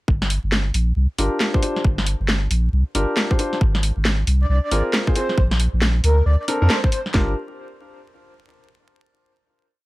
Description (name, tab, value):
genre	UK garage, two-step garage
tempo	136 BPM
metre	4/4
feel	swing 63% on 16ths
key	G minor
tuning	A4 = 440 Hz
part	saturated sub bass	bass	0.1-7.3 s	G1 to F2	-18 LUFS	equal	sidechain pumping
part	garage drum kit	drums	0.1-7.3 s	kick drum, snare drum	-18 LUFS	equal	none
part	garage drum kit	drums	0.2-7.1 s	hi-hat, snare drum	-22 LUFS	equal	none
part	warm grand piano	stabs	1.2-7.3 s	C4 to C5	-25 LUFS	left 1 dB	vintage 12-bit sampler grit, tape echo
part	breathy flute-like synth lead	melody	4.4-7.0 s	Bb4 to D5	-27 LUFS	right 1 dB	analog chorus, tape echo
room	little or no reverb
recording	vinyl crackle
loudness	-17 LUFS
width	side -19 dB against mid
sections	0.1-7.1 groove; 7.1-8.9 final chord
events	band accent 6.7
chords	0.1 Gm7; 3.6 Ab69; 5.4 Bbmaj9; 7.1 Gm7